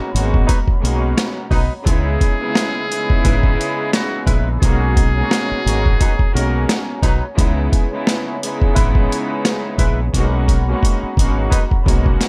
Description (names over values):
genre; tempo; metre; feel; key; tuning
hip hop, boom-bap hip-hop; 87 BPM; 4/4; swing 57% on 16ths; C# dorian; A4 = 445 Hz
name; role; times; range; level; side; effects
rich chamber string section; accompaniment; 0.0-12.3 s; B2 to F#4; -25 LUFS; equal; high-pass filter, low-pass filter
hollow soft pad; sustained chords; 0.0-12.3 s; F#4 to E6; -33 LUFS; equal; chorus, high-pass filter, low-pass filter
deep dub fingered electric bass; bass; 0.0-12.2 s; G#1 to C#2; -21 LUFS; equal; none
boom bap sampler-style drum kit; drums; 0.2-12.3 s; hi-hat, kick drum, rim click, snare drum; -19 LUFS; equal; none
mellow horn section; stabs; 0.5-11.6 s; F#3 to B4; -29 LUFS; equal; high-pass filter, low-pass filter, tape echo
trumpet with metal mute; melody; 1.9-6.7 s; F#4 to A#4; -26 LUFS; equal; high-pass filter, low-pass filter, tape echo
room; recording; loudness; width
little or no reverb; none; -17 LUFS; mono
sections
0.0-12.3 A section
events
drum fill 10.1-12.3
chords
0.0 G#m11; 1.9 C#m7; 4.6 G#m11; 7.4 C#m7; 10.1 G#m11